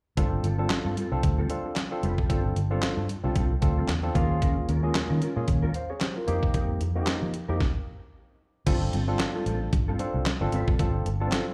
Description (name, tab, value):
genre	early-eighties boogie funk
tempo	113 BPM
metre	4/4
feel	swing 56% on 16ths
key	unclear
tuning	A4 = 440 Hz
part	barky tine electric piano	accompaniment	0.2-11.5 s	Bb3 to F5	-34 LUFS	equal	overdrive, subtle chorus, slapback echo
part	mellow electric guitar	riff	0.2-11.5 s	G3 to C5	-38 LUFS	equal	ensemble chorus, slapback echo
part	vintage muted fingered electric bass	bass	0.2-11.3 s	F1 to F3	-30 LUFS	equal	none
part	detuned 8-bit digital drum machine	drums	0.2-11.5 s	crash cymbal, handclaps, hi-hat, kick drum, snare drum	-30 LUFS	equal	none
room	little or no reverb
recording	live gig heard through the venue's PA, club reverb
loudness	-27 LUFS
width	mono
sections	0.2-8.7 A section; 8.7-11.5 B section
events	stop 7.6-8.7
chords	0.2 G9sus4; 4.2 Eb9sus4; 6.3 F9sus4; 8.7 G9sus4